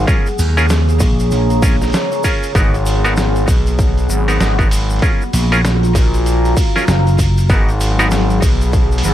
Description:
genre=glitch hop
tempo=97 BPM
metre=4/4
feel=swing 60% on 16ths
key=G# dorian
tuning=A4 = 440 Hz
part: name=warbly tape-like pad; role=sustained chords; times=0.0-9.1 s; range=C#3 to G#4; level=-23 LUFS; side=equal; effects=chorus, built-in reverb, sidechain pumping
part: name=gritty driven synth bass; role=bass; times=0.0-9.1 s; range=G#1 to B1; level=-15 LUFS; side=equal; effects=tube saturation
part: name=deep dark ambient pad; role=texture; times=0.0-9.1 s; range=G#4 to B5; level=-24 LUFS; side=equal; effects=chorus, built-in reverb, sidechain pumping
part: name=bright clav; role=stabs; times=0.1-8.1 s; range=B3 to A#4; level=-19 LUFS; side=equal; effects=sidechain pumping, digital delay
part: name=boom bap sampler-style drum kit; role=drums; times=0.1-9.1 s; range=hi-hat, snare drum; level=-23 LUFS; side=equal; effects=none
part: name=electronic kick drum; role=drums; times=0.1-8.9 s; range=none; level=-15 LUFS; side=equal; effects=none
part: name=tube shaker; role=percussion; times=0.1-9.1 s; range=none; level=-30 LUFS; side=left 4 dB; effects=none
part: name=vintage slap bass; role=bass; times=0.4-7.5 s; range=F#1 to D#2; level=-14 LUFS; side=equal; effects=none
room=little or no reverb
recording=vinyl crackle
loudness=-12 LUFS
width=side -12 dB against mid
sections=0.0-9.1 A section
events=none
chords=0.1 A#m7; 2.6 G#m7; 5.0 F#maj7; 7.5 G#m7

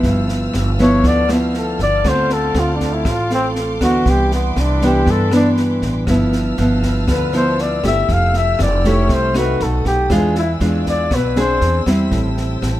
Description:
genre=bossa nova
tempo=119 BPM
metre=4/4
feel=straight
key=unclear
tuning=A4 = 440 Hz
part: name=nylon-string guitar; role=accompaniment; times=0.0-12.8 s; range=G2 to G#4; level=-18 LUFS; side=equal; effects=none
part: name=dark studio string section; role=sustained chords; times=0.0-12.8 s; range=A4 to F6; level=-30 LUFS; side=right 1 dB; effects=none
part: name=upright bass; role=bass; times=0.0-12.8 s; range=F1 to G2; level=-20 LUFS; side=equal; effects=none
part: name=open jazz drum kit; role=drums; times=0.0-12.7 s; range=kick drum, rim click, snare drum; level=-24 LUFS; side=equal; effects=none
part: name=breathy flugelhorn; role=melody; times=0.8-11.8 s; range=B3 to F5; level=-19 LUFS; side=left 2 dB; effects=none
room=little or no reverb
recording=none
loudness=-14 LUFS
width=side -14 dB against mid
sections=0.0-12.8 A section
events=flugelhorn solo 0.0-12.8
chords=0.0 G13; 2.1 Dm7; 4.1 Cmaj9; 6.1 G13; 8.1 Fmaj9; 9.6 B7; 10.1 E7b9; 11.6 E7b13; 12.1 Am7

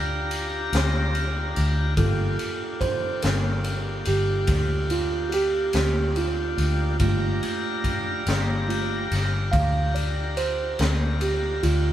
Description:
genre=slow blues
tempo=48 BPM (dotted quarters)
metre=12/8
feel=straight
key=G minor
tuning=A4 = 439 Hz
part: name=tonewheel organ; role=sustained chords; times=0.0-11.9 s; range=Bb3 to Bb5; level=-30 LUFS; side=left 2 dB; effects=slow rotary speaker
part: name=vintage muted fingered electric bass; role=bass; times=0.0-11.9 s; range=G1 to D2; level=-24 LUFS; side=left 1 dB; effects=none
part: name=raw garage drum kit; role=drums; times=0.3-11.8 s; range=kick drum, ride cymbal, snare drum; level=-29 LUFS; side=left 1 dB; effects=none
part: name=mellow tine electric piano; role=accompaniment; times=2.0-11.9 s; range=A3 to F5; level=-27 LUFS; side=right 4 dB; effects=none
room=light reverb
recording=band playing live in one room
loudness=-22 LUFS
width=side -12 dB against mid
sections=0.0-11.9 A section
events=tine electric piano solo 0.0-11.9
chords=0.0 Gm7

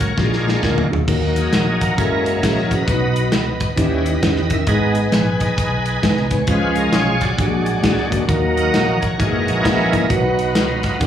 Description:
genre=uptempo gospel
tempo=133 BPM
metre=4/4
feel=swing 62% on 8ths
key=unclear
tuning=A4 = 442 Hz
part: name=bright tonewheel organ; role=sustained chords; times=0.0-11.1 s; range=E3 to E5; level=-20 LUFS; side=right 1 dB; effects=fast rotary speaker, chorus vibrato
part: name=fingered electric bass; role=bass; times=0.0-11.1 s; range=F#1 to E2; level=-22 LUFS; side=equal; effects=none
part: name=modern studio drum kit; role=drums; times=0.0-11.1 s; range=crash cymbal, hi-hat, kick drum, snare drum, toms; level=-21 LUFS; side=equal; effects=none
part: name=mellow tine electric piano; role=accompaniment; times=0.2-11.1 s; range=G#2 to B4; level=-21 LUFS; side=left 1 dB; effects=medium stereo tremolo, slapback echo
part: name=warm studio string section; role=sustained chords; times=1.1-11.1 s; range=G#4 to B5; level=-29 LUFS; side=left 1 dB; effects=none
room=moderate club reverb, RT60 0.8 s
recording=live gig heard through the venue's PA, club reverb, studio ambience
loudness=-15 LUFS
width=side -9 dB against mid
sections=0.0-11.1 A section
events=tonewheel organ solo 0.0-11.1; drum fill 0.2-1.1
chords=0.2 A#7; 1.1 D#m; 2.0 F#7; 2.9 B; 3.8 D#7b9; 4.7 G#m; 6.5 C#; 7.4 A#7alt; 8.3 D#m; 9.2 F#13; 10.1 B

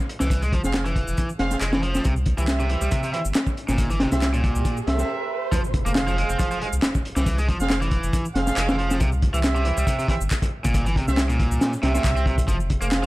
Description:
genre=breakbeat, breaks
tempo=138 BPM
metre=4/4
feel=swing 55% on 16ths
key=F harmonic minor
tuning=A4 = 444 Hz
part: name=crunchy breakbeat drum kit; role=drums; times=0.1-13.0 s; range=hi-hat, kick drum, snare drum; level=-23 LUFS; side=equal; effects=none
part: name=cranked stack guitar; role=riff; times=0.2-13.1 s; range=Bb2 to C4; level=-28 LUFS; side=equal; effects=overdrive, digital delay
part: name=saturated sub bass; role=bass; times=0.2-13.1 s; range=F1 to C2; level=-24 LUFS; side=equal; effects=none
part: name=electronic shaker and handclaps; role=drums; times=0.2-13.1 s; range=none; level=-33 LUFS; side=left 1 dB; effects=overdrive
part: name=warm horn section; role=stabs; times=0.6-13.1 s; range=G4 to F5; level=-30 LUFS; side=right 4 dB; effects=vintage 12-bit sampler grit, digital delay
part: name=riser and impact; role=sound effects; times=3.3-7.3 s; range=none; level=-33 LUFS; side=right 1 dB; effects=none
room=little or no reverb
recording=dark, warm production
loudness=-20 LUFS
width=side -18 dB against mid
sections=0.0-5.5 A section; 5.5-13.1 B section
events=riser 3.3-5.5; break 5.1-5.5; drop 5.5-13.1; impact 5.5-7.3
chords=0.0 Fm; 2.0 C; 5.5 Fm; 9.0 C; 12.5 Fm

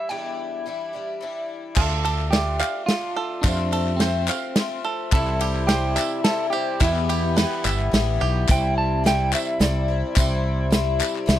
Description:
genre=indie folk with a building arrangement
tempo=107 BPM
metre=3/4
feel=straight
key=unclear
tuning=A4 = 442 Hz
part: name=clean electric guitar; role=melody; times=0.0-11.4 s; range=C4 to A5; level=-28 LUFS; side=right 3 dB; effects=tremolo
part: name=picked twelve-string acoustic guitar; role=accompaniment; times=0.0-11.4 s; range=E2 to F4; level=-27 LUFS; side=left 5 dB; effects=lush chorus
part: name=bluegrass banjo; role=arpeggios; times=1.8-8.5 s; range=E4 to F5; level=-29 LUFS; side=right 7 dB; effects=none
part: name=mellow fretless electric bass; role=bass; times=1.8-11.4 s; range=G1 to F2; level=-24 LUFS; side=equal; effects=none
part: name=natural country drum kit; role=drums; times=1.8-11.4 s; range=crash cymbal, hi-hat, kick drum, ride cymbal, snare drum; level=-23 LUFS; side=equal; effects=none
part: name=group handclap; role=percussion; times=1.8-11.2 s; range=none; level=-30 LUFS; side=left 14 dB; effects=none
part: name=tambourine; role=percussion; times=1.8-11.1 s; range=none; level=-33 LUFS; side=right 28 dB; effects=none
part: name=hand-pumped harmonium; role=sustained chords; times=5.1-11.4 s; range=C3 to G4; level=-31 LUFS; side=right 1 dB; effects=none
room=little or no reverb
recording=dry, close 1970s-style studio recording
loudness=-20 LUFS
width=side -12 dB against mid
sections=0.0-1.8 A section; 1.8-8.5 B section; 8.5-11.4 C section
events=break 0.1-1.8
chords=0.0 Em7; 1.8 Dm; 3.5 F; 5.1 C; 6.8 Em; 8.5 C

